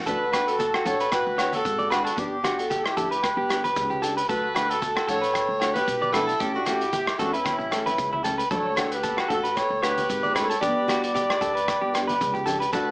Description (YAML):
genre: highlife guitar band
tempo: 114 BPM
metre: 4/4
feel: swing 55% on 16ths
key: D major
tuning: A4 = 437 Hz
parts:
  - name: clean electric guitar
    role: arpeggios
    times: 0.0-12.9 s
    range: E4 to D5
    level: -26 LUFS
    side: right 1 dB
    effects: slapback echo
  - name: warm horn section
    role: melody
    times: 0.1-12.9 s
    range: C#4 to D5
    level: -26 LUFS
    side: equal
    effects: slapback echo
  - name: nylon-string guitar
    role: accompaniment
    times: 0.1-12.9 s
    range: E3 to A4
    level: -32 LUFS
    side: left 1 dB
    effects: none
  - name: upright bass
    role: bass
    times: 0.1-12.9 s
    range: G1 to E2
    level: -36 LUFS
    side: equal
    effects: none
  - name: crunchy breakbeat drum kit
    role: drums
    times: 0.1-12.9 s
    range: hi-hat, kick drum, rim click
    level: -30 LUFS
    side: equal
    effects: none
  - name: congas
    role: percussion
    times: 0.1-12.9 s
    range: none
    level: -38 LUFS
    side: equal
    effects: none
  - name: shekere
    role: percussion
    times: 0.1-12.9 s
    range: none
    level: -41 LUFS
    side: left 1 dB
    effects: none
  - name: agogo bells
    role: percussion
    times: 0.3-12.6 s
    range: none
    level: -34 LUFS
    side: left 1 dB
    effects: none
room: moderate studio reverb, RT60 0.5 s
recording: small speaker sound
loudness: -22 LUFS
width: side -24 dB against mid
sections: 0.1-12.9 A section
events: none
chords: 0.1 D; 2.2 G; 4.3 A; 8.5 D; 10.6 G